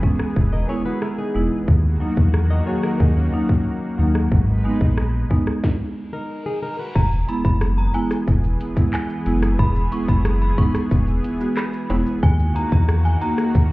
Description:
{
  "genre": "dancehall",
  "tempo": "91 BPM",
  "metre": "4/4",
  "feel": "straight",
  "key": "unclear",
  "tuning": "A4 = 439 Hz",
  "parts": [
    { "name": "marimba with medium mallets", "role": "accompaniment", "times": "0.0-13.4 s", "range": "Gb3 to Gb4", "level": "-24 LUFS", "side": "right 1 dB", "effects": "none" },
    { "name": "lush unison pad", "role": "sustained chords", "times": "0.0-13.7 s", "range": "Eb3 to Cb5", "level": "-29 LUFS", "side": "equal", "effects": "chorus, sidechain pumping" },
    { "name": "island pop drum kit", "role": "drums", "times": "0.0-13.7 s", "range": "crash cymbal, handclaps, hi-hat, kick drum, rim click, shaker, snare drum", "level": "-19 LUFS", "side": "equal", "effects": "none" },
    { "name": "sub bass with octave", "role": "bass", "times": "0.4-13.7 s", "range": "E1 to Fb2", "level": "-19 LUFS", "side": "equal", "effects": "none" },
    { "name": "flamenco guitar", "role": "arpeggios", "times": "0.5-7.1 s", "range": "Db4 to Eb5", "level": "-29 LUFS", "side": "left 2 dB", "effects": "none" },
    { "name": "reverse cymbal", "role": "sound effects", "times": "5.9-7.0 s", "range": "none", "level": "-45 LUFS", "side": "left 1 dB", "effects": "none" },
    { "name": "synth chime", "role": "melody", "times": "7.0-13.3 s", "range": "G#5 to Db6", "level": "-29 LUFS", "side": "right 1 dB", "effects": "ensemble chorus, tremolo, ping-pong delay" },
    { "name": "maracas and timbales", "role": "percussion", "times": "7.0-13.7 s", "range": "none", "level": "-34 LUFS", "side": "left 2 dB", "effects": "none" }
  ],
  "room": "little or no reverb",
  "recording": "heard muffled through a wall, club reverb, EQ, nothing above 10.5 kHz",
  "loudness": "-17 LUFS",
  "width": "side -20 dB against mid",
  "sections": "0.0-7.0 A section; 7.0-13.7 B section",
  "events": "stop 5.6-7.0; reverse cymbal 5.9-7.0",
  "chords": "0.0 E; 1.7 Ebm; 4.3 Abm; 7.0 E; 12.2 Ebm"
}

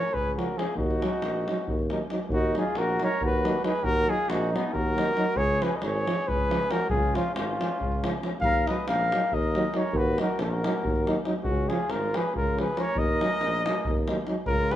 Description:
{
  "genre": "balkan folk, Balkan brass band",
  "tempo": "275 BPM (eighths)",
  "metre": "7/8",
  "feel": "straight",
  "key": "Eb minor",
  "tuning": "A4 = 440 Hz",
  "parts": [
    { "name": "mellow trumpet", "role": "melody", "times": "0.0-14.8 s", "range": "Eb4 to F5", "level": "-28 LUFS", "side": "left 1 dB", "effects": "none" },
    { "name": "warm flugelhorn", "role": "second line", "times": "0.0-14.8 s", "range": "Cb4 to Cb5", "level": "-34 LUFS", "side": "right 1 dB", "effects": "none" },
    { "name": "warm tuba", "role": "bass", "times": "0.1-14.7 s", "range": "Ab1 to Eb2", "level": "-30 LUFS", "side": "equal", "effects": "none" },
    { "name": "davul", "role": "percussion", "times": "0.1-14.8 s", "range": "none", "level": "-31 LUFS", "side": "equal", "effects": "none" },
    { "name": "bright trombone", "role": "accompaniment", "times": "0.4-14.8 s", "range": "Db4 to Eb4", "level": "-35 LUFS", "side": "left 1 dB", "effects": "none" },
    { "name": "warm euphonium", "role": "accompaniment", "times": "0.4-14.8 s", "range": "F3 to Gb3", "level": "-33 LUFS", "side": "right 2 dB", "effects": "none" }
  ],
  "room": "moderate stone room reverb, RT60 1.1 s",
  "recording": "band playing live in one room",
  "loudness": "-24 LUFS",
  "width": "side -12 dB against mid",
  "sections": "0.0-2.3 A section; 2.3-14.5 A section",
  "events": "none",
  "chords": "0.0 Db; 0.8 Ebm; 5.4 Db; 8.4 Ebm; 11.5 Db; 13.0 Ebm"
}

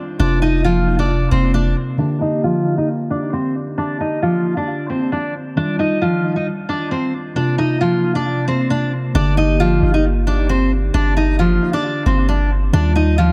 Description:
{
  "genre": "hip hop, trap",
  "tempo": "134 BPM",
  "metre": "4/4",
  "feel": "half-time",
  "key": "G minor",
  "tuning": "A4 = 438 Hz",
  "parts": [
    { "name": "mellow tine electric piano", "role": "accompaniment", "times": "0.0-13.3 s", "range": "C3 to G4", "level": "-24 LUFS", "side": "equal", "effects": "phaser, low-pass filter, analog delay" },
    { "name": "fingerpicked steel-string acoustic guitar", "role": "melody", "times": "0.2-13.3 s", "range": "F3 to Eb5", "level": "-20 LUFS", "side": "equal", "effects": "low-pass filter, analog delay" },
    { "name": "warm 808-style bass", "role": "bass", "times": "0.2-1.7, 9.1-13.3 s", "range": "F1 to Eb2", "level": "-19 LUFS", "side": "equal", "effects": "none" }
  ],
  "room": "light reverb, small room ambience",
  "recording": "echo-heavy mix",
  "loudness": "-18 LUFS",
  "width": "mono",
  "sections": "0.0-2.0 A section; 2.0-9.2 B section; 9.2-13.3 A section",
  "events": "filter sweep 2.0-9.2",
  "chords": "0.2 Fsus4; 2.0 Gm; 5.6 Ebadd9; 7.4 Fsus4; 9.2 Gm; 12.7 Ebadd9"
}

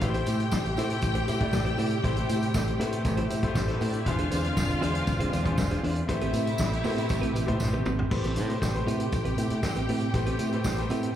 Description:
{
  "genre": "disco",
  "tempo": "119 BPM",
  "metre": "4/4",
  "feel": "straight",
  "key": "A minor",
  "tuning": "A4 = 439 Hz",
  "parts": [
    { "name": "clear studio string section", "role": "second line", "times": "0.0-11.2 s", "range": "F3 to G5", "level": "-36 LUFS", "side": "left 1 dB", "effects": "slapback echo" },
    { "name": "clean electric guitar", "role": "accompaniment", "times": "0.0-11.1 s", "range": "C4 to C5", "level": "-35 LUFS", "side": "right 6 dB", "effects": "spring reverb, slapback echo" },
    { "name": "clear baby grand piano", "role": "accompaniment", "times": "0.0-11.2 s", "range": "E3 to D5", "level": "-33 LUFS", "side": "left 6 dB", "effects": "slapback echo" },
    { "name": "rich studio string section", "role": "sustained chords", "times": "0.0-11.2 s", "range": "B2 to G4", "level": "-34 LUFS", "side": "right 1 dB", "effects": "none" },
    { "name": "fingered electric bass", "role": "bass", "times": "0.0-11.1 s", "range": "E1 to A2", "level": "-29 LUFS", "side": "equal", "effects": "none" },
    { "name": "warm soul drum kit", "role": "drums", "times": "0.0-11.1 s", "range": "crash cymbal, hi-hat, kick drum, snare drum, toms", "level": "-31 LUFS", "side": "equal", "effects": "none" },
    { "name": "tambourine", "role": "percussion", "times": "0.0-11.0 s", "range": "none", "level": "-45 LUFS", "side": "right 3 dB", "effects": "none" }
  ],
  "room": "little or no reverb",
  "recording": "live gig heard through the venue's PA, club reverb",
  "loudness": "-25 LUFS",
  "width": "side -10 dB against mid",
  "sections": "0.0-8.1 A section; 8.1-11.2 B section",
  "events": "drum fill 7.6-8.1",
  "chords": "0.0 Am7; 4.1 E7b9b13; 6.1 Am9"
}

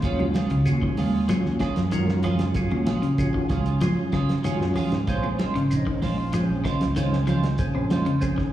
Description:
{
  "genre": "afrobeat",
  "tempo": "95 BPM",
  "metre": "4/4",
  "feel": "straight",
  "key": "unclear",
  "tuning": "A4 = 440 Hz",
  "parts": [
    { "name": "percussive tonewheel organ", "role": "accompaniment", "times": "0.0-8.5 s", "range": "Gb3 to Bb4", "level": "-31 LUFS", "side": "equal", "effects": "slow rotary speaker, chorus vibrato, slapback echo" },
    { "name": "clean electric guitar", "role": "stabs", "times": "0.0-8.1 s", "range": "Gb3 to C5", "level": "-30 LUFS", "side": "right 5 dB", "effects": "analog chorus, slapback echo" },
    { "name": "fingered electric bass", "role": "bass", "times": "0.0-8.4 s", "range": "Ab1 to Ab2", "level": "-25 LUFS", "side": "right 1 dB", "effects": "none" },
    { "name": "cloth-damped thuddy drum kit", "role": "drums", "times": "0.0-8.5 s", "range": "hi-hat, kick drum, snare drum", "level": "-29 LUFS", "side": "equal", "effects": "none" },
    { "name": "shekere", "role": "percussion", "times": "0.0-8.4 s", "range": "none", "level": "-35 LUFS", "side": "right 1 dB", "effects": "slapback echo" },
    { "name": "electric guitar at the edge of break-up", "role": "arpeggios", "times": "0.2-8.5 s", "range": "C3 to Gb3", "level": "-27 LUFS", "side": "left 2 dB", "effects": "spring reverb" },
    { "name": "claves", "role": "percussion", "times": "0.2-8.4 s", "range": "none", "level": "-48 LUFS", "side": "left 2 dB", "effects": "none" },
    { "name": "congas", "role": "percussion", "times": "0.2-8.1 s", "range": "none", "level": "-29 LUFS", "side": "right 2 dB", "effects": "none" }
  ],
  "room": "light reverb",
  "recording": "live gig heard through the venue's PA, club reverb, studio reverb",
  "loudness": "-21 LUFS",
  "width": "side -13 dB against mid",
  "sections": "0.0-8.5 A section",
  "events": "none",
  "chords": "0.0 Ebm11; 5.1 Bbm9"
}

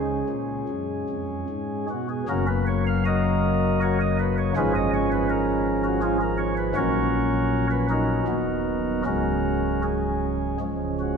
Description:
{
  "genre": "classical, chorale-style piece for pipe organ",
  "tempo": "80 BPM",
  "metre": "3/4",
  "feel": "uneven beats, rubato",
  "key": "F# major",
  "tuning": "A4 = 440 Hz",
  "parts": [
    { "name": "pipe organ, flutes", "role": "solo", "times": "0.0-11.2 s", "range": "C#1 to E#5", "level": "-22 LUFS", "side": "equal", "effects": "none" }
  ],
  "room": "wet church reverb, RT60 3.3 s",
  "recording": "minimal, uncompressed stereo recording",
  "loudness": "-22 LUFS",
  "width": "side -6 dB against mid",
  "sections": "0.0-2.3 A section; 2.3-11.2 B section",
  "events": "none",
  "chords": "0.0 C#; 2.3 F#; 4.6 C#/G#; 6.8 F#/A#; 8.3 B/D#; 9.0 C#sus4; 10.6 C#"
}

